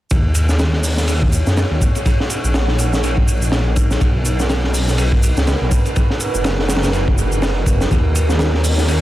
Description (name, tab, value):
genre	breakbeat, breaks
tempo	123 BPM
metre	4/4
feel	swing 58% on 16ths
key	Eb minor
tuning	A4 = 440 Hz
part	deep dark ambient pad	sustained chords	1.0-9.0 s	Eb4 to Db5	-25 LUFS	right 1 dB	chorus, built-in reverb, sidechain pumping
part	detuned saw bass	bass	0.1-9.0 s	F#1 to Gb2	-17 LUFS	equal	none
part	crunchy breakbeat drum kit	drums	0.1-9.0 s	hi-hat, kick drum, ride cymbal, snare drum	-17 LUFS	equal	dub echo
part	shaker	drums	0.1-9.0 s	none	-29 LUFS	right 2 dB	none
room	small room reverb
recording	echo-heavy mix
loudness	-14 LUFS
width	side -15 dB against mid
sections	0.1-9.0 A section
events	none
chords	0.1 Ebm7; 4.0 Bmaj7; 7.9 Ebm7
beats	| 0.11 0.59 1.08 1.57 | 2.06 2.55 3.03 3.52 | 4.01 4.50 4.99 5.47 | 5.96 6.45 6.94 7.42 | 7.91 8.40 8.89